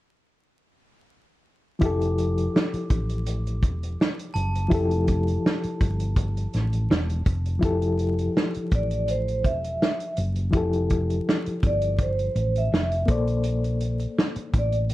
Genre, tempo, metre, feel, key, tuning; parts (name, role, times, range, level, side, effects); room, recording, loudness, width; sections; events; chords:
lush 1970s-style soul; 82 BPM; 4/4; swing 54% on 16ths; F major; A4 = 439 Hz
reed electric piano; accompaniment; 1.8-14.9 s; F3 to D5; -28 LUFS; left 2 dB; overdrive, fast tremolo
hollow-body short-scale fingered electric bass; bass; 1.8-14.9 s; E1 to Bb1; -26 LUFS; equal
warm soul drum kit; drums; 1.8-14.9 s; hi-hat, kick drum, snare drum; -24 LUFS; equal; vintage 12-bit sampler grit
glockenspiel with brass mallets; texture; 1.8-5.4 s; A5 to D6; -40 LUFS; right 4 dB; stereo widening
vibraphone with soft mallets; melody; 8.7-14.7 s; C5 to E5; -27 LUFS; right 1 dB
light reverb; dark, warm production, vinyl crackle; -22 LUFS; side -16 dB against mid
1.8-7.6 A section; 7.6-14.9 B section
1.8 Fmaj9; 7.3 N.C.; 7.6 Fmaj9; 13.1 Bbmaj9